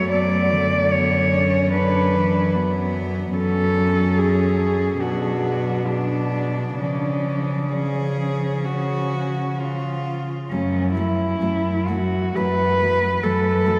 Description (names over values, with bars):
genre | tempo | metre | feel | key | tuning
classical, lyrical piece for cello ensemble | 61-76 BPM | 4/4 | rubato | F# minor | A4 = 440 Hz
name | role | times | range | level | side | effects
dark cello | melody | 0.0-13.8 s | C#4 to D5 | -25 LUFS | equal | none
warm cello | second line | 0.0-13.7 s | A3 to G#4 | -31 LUFS | equal | none
dark cello | accompaniment | 0.0-13.7 s | D3 to F#3 | -30 LUFS | equal | none
clear cello | bass | 0.0-13.8 s | F#2 to C#3 | -25 LUFS | equal | none
room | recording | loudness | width
wet cathedral reverb, RT60 5.4 s | faint mains hum | -21 LUFS | mono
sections
0.0-10.5 A section; 10.5-13.8 B section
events
none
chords
0.1 Bm/F#; 3.4 F#m; 5.0 Bm; 6.8 C#; 10.5 F#m